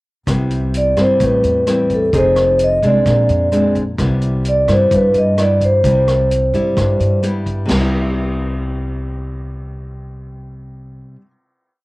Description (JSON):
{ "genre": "bossa nova", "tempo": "129 BPM", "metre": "4/4", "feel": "straight", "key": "C major", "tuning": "A4 = 440 Hz", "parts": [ { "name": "nylon-string guitar", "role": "accompaniment", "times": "0.3-11.3 s", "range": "G2 to Ab4", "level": "-20 LUFS", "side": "left 1 dB", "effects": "cassette tape" }, { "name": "upright bass", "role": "bass", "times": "0.3-11.0 s", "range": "F1 to G2", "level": "-19 LUFS", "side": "equal", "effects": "none" }, { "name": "vintage drum kit", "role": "drums", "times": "0.3-7.8 s", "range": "crash cymbal, hi-hat, kick drum, rim click, snare drum", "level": "-24 LUFS", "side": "equal", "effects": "cassette tape" }, { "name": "vibraphone with soft mallets", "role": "melody", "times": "0.8-7.2 s", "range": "A4 to Eb5", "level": "-14 LUFS", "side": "equal", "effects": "none" } ], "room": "studio reverb", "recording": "home recording on cassette", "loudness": "-13 LUFS", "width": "side -20 dB against mid", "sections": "0.3-7.7 A section; 7.7-11.4 final chord", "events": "none", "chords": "0.3 Cmaj7; 1.2 Am7; 2.1 Fm7; 3.1 Bb9; 4.0 Cmaj7", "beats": "| 0.27 0.73 1.20 1.66 | 2.13 2.59 3.06 3.52 | 3.98 4.45 4.91 5.38 | 5.84 6.30 6.77 7.23 | 7.69 8.16 8.62 9.09 | 9.55 10.02 10.48 10.95" }